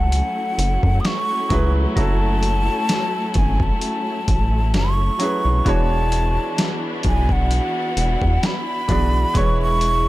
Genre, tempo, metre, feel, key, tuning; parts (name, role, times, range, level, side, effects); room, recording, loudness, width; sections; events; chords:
contemporary R&B; 65 BPM; 4/4; swing 54% on 16ths; F# minor; A4 = 439 Hz
breathy hollow jazz flute; melody; 0.0-10.1 s; F#5 to D#6; -23 LUFS; equal; dub echo
warm grand piano; accompaniment; 0.0-10.1 s; E3 to D5; -26 LUFS; right 2 dB
warm symphonic string section; sustained chords; 0.0-10.1 s; E3 to F#4; -28 LUFS; left 1 dB
rubbery square bass; bass; 0.0-10.1 s; E1 to F#2; -19 LUFS; equal
dusty soul sampler-style drum kit; drums; 0.1-10.0 s; hi-hat, kick drum, snare drum; -22 LUFS; equal; overdrive
little or no reverb; echo-heavy mix; -17 LUFS; side -17 dB against mid
0.0-10.1 A section
0.0 F#m7; 5.7 E13; 9.4 Amaj7/E (rootless)